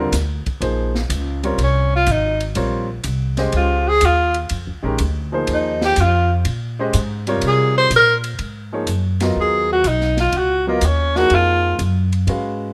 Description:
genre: modal jazz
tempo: 124 BPM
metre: 4/4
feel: swing 69% on 8ths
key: G# dorian from 8.4 s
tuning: A4 = 442 Hz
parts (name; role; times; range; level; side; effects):
- warm concert grand piano; accompaniment; 0.0-12.7 s; C3 to E#5; -25 LUFS; equal; none
- upright bass; bass; 0.0-12.7 s; Ab1 to C3; -22 LUFS; equal; none
- open jazz drum kit; drums; 0.1-12.4 s; hi-hat, kick drum, ride cymbal, snare drum; -32 LUFS; equal; none
- clear tenor saxophone; melody; 1.6-11.8 s; A#3 to C5; -19 LUFS; equal; none
room: light reverb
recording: none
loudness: -18 LUFS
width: mono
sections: 0.0-8.4 A section; 8.4-12.7 A section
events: tenor saxophone solo 0.0-12.7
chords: 0.0 Cm11; 0.6 Bbm11; 8.4 G#13sus4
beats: 0.14 | 0.62 1.11 1.59 2.08 | 2.56 3.05 3.54 4.02 | 4.51 4.99 5.48 5.96 | 6.45 6.94 7.42 7.91 | 8.39 8.88 9.37 9.85 | 10.34 10.82 11.31 11.79 | 12.28

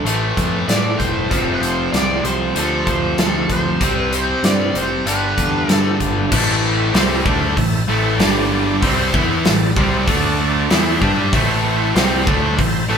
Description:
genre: blues rock power trio and southern rock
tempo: 96 BPM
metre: 4/4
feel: straight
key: A minor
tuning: A4 = 438 Hz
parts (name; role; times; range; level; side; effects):
- overdriven tonewheel organ; sustained chords; 0.0-13.0 s; G3 to D5; -26 LUFS; right 2 dB; slow rotary speaker
- distorted electric guitar; riff; 0.0-13.0 s; F2 to G4; -19 LUFS; equal; overdrive
- growling picked electric bass; bass; 0.0-13.0 s; E1 to A2; -22 LUFS; equal; overdrive
- big rock drum kit; drums; 0.1-12.7 s; crash cymbal, hi-hat, kick drum, snare drum; -19 LUFS; equal; none
- biting lead guitar; melody; 0.7-6.0 s; A4 to D5; -23 LUFS; right 1 dB; wah, overdrive
room: moderate studio ambience, RT60 0.5 s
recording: band playing live in one room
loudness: -14 LUFS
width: side -7 dB against mid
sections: 0.0-6.3 A section; 6.3-13.0 B section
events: none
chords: 0.1 Am; 1.3 F; 3.8 C; 5.1 G; 6.3 Am; 8.2 G5; 8.8 Am; 10.1 D5; 10.7 Am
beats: 0.05 0.68 | 1.30 1.93 2.56 3.18 | 3.81 4.44 5.06 5.69 | 6.32 6.94 7.57 8.20 | 8.82 9.45 10.08 10.71 | 11.33 11.96 12.59

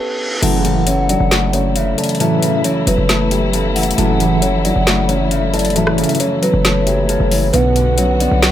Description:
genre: hip hop, trap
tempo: 135 BPM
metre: 4/4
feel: half-time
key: F# minor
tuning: A4 = 441 Hz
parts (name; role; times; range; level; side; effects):
- kalimba; melody; 0.0-8.5 s; B3 to A5; -20 LUFS; right 2 dB; digital delay
- gliding portamento lead; second line; 0.4-8.5 s; C#5 to F#5; -22 LUFS; left 2 dB; chorus, digital delay
- Celtic harp; accompaniment; 0.4-8.5 s; F#2 to F#4; -20 LUFS; left 2 dB; none
- dark symphonic string section; sustained chords; 0.4-8.5 s; D3 to F#4; -24 LUFS; left 1 dB; none
- mellow synth brass; stabs; 0.4-8.0 s; F#2 to E3; -19 LUFS; right 1 dB; chorus
- hard-hitting 808-style bass; bass; 0.4-8.5 s; F#1 to B1; -18 LUFS; equal; none
- trap drum kit; drums; 0.4-8.5 s; crash cymbal, hi-hat, rim click, snare drum; -19 LUFS; left 1 dB; none
room: little or no reverb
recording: none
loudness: -13 LUFS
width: side -11 dB against mid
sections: 0.4-8.5 A section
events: break 0.0-0.4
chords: 0.4 F#m7; 7.5 Bm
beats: | 0.42 0.87 1.31 1.76 | 2.20 2.65 3.09 3.54 | 3.98 4.42 4.87 5.31 | 5.76 6.20 6.65 7.09 | 7.54 7.98 8.43

